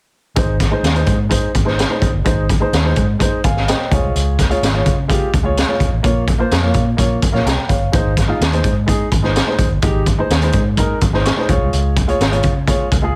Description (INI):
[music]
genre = uptempo 1960s-style soul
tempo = 127 BPM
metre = 4/4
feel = straight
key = Ab major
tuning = A4 = 440 Hz
[part]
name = warm upright piano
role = accompaniment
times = 0.4-13.2 s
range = Ab3 to Db6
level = -22 LUFS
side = equal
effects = none
[part]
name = vintage muted fingered electric bass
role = bass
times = 0.4-13.2 s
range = G1 to Db3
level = -21 LUFS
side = equal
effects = none
[part]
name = raw garage drum kit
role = drums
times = 0.4-13.0 s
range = hi-hat, kick drum, snare drum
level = -19 LUFS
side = equal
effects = none
[sound]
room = light reverb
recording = heavily compressed radio sound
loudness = -16 LUFS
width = mono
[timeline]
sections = 0.4-13.2 A section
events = upright piano fill 3.2-4.1, 11.0-11.7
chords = 0.4 Ab; 3.9 Db; 6.0 Bbm; 7.9 Ab; 11.5 Db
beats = | 0.36 0.84 1.31 1.78 | 2.26 2.73 3.20 3.68 | 4.15 4.62 5.10 5.57 | 6.04 6.51 6.99 7.46 | 7.94 8.41 8.88 9.36 | 9.83 10.30 10.78 11.25 | 11.73 12.20 12.67 13.15